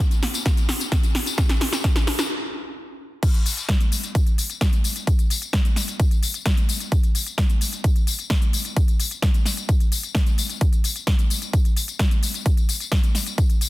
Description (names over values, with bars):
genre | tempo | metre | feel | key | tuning
EDM | 130 BPM | 4/4 | straight | none | none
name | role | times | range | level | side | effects
big-room dance drum kit | drums | 0.0-13.7 s | crash cymbal, hi-hat, snare drum, tambourine | -25 LUFS | left 1 dB | overdrive
electronic kick drum | drums | 0.0-13.5 s | none | -19 LUFS | equal | overdrive
room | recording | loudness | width
light reverb | dense, heavily limited modern master | -19 LUFS | side -18 dB against mid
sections
0.0-3.2 A section; 3.2-13.7 B section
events
build-up 0.0-3.2; drum fill 0.0-2.3; stop 2.3-3.2; drop 3.2-13.7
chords
none